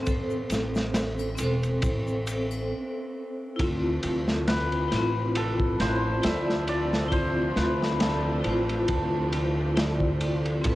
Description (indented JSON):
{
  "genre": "trip hop",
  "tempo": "68 BPM",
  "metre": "4/4",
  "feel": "swing 56% on 16ths",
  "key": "D dorian",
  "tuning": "A4 = 441 Hz",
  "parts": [
    { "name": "hammered dulcimer", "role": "melody", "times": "0.0-10.8 s", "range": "A4 to E5", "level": "-32 LUFS", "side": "left 1 dB", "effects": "cassette tape, tape echo" },
    { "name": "vibraphone with hard mallets", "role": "accompaniment", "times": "0.0-10.8 s", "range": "C4 to D5", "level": "-29 LUFS", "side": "equal", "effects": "tremolo, vintage 12-bit sampler grit, cassette tape" },
    { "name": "upright bass", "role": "bass", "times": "0.0-10.8 s", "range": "E1 to D2", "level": "-30 LUFS", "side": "equal", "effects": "none" },
    { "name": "flickering grainy texture", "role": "texture", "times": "0.0-2.7 s", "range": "C4", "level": "-40 LUFS", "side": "right 2 dB", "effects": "none" },
    { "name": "crunchy breakbeat drum kit", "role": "drums", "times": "0.1-10.8 s", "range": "kick drum, ride cymbal, snare drum", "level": "-30 LUFS", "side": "equal", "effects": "cassette tape" },
    { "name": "tube shaker and triangle", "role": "percussion", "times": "0.1-2.7 s", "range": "none", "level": "-47 LUFS", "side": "left 9 dB", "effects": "none" },
    { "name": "bright studio string section", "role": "sustained chords", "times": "3.6-10.8 s", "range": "C3 to E4", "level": "-34 LUFS", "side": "equal", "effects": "vintage 12-bit sampler grit, cassette tape" }
  ],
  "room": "light reverb",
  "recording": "home recording on cassette",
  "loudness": "-24 LUFS",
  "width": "side -16 dB against mid",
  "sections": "0.0-3.6 A section; 3.6-10.8 B section",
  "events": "stop 2.7-3.6",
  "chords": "0.0 Am; 3.6 Dm7",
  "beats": "| 0.06 0.94 1.83 2.71 | 3.59 4.47 5.36 6.24 | 7.12 8.00 8.89 9.77 | 10.65"
}